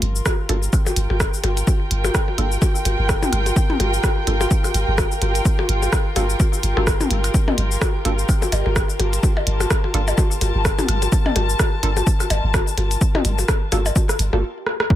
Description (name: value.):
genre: minimal techno.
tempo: 127 BPM.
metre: 4/4.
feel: swing 57% on 16ths.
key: G minor.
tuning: A4 = 440 Hz.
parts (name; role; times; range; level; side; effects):
punchy sub bass; bass; 0.0-14.4 s; G1; -21 LUFS; equal; sidechain pumping.
minimal click drum kit; drums; 0.0-14.9 s; cabasa, hi-hat, rim click; -24 LUFS; equal; none.
dark studio string section; texture; 0.0-14.4 s; F4 to A5; -27 LUFS; left 1 dB; sidechain pumping.
flickering grainy texture; texture; 0.1-14.4 s; G4; -34 LUFS; right 2 dB; built-in reverb, sidechain pumping.
electronic kick drum; drums; 0.3-15.0 s; none; -19 LUFS; equal; overdrive.
electronic percussion blips, woodblock and toms; percussion; 0.3-14.4 s; none; -25 LUFS; left 3 dB; none.
filtered dub chord stab; stabs; 0.5-14.4 s; Bb3 to A4; -30 LUFS; right 4 dB; lush chorus, ping-pong delay.
room: little or no reverb.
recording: none.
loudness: -17 LUFS.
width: side -12 dB against mid.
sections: 0.0-14.9 A section.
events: break 14.4-14.9; drum fill 14.7.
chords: 0.0 Gm7.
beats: 0.26 0.73 1.20 | 1.67 2.15 2.62 3.09 | 3.56 4.04 4.51 4.98 | 5.45 5.92 6.40 6.87 | 7.34 7.82 8.29 8.76 | 9.23 9.71 10.18 10.65 | 11.12 11.60 12.07 12.54 | 13.01 13.48 13.96 14.43 | 14.90.